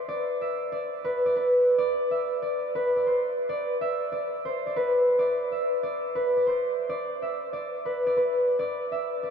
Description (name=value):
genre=hip hop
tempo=141 BPM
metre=4/4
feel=half-time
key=unclear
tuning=A4 = 440 Hz
part: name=concert harp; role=solo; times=0.0-9.3 s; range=B4 to E5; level=-24 LUFS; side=equal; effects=low-pass filter, analog delay
room=wet huge ambient reverb, RT60 8.7 s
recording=dreamy mix soaked in reverb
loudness=-24 LUFS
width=side -7 dB against mid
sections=0.0-9.3 A section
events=none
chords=none